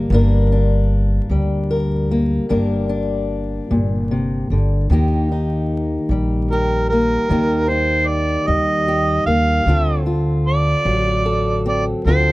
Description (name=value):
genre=acoustic country blues, solo or duo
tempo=50 BPM (dotted quarters)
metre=12/8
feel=straight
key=G minor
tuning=A4 = 438 Hz
part: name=fingerpicked steel-string acoustic guitar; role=accompaniment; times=0.0-12.3 s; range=G2 to Bb4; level=-20 LUFS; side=left 1 dB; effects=none
part: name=upright bass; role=bass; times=0.0-12.3 s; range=G1 to Eb2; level=-19 LUFS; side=equal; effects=none
part: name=overdriven harmonica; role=melody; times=6.5-12.3 s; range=Bb4 to F5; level=-19 LUFS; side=right 2 dB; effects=none
room=light reverb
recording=close, detailed microphones, vinyl crackle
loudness=-16 LUFS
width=side -19 dB against mid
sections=0.0-12.3 A section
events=none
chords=0.0 Gm; 4.9 Eb; 9.7 D7#9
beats=| 0.12 1.31 2.51 3.71 | 4.90 6.09 7.29 8.48 | 9.67 10.86 12.05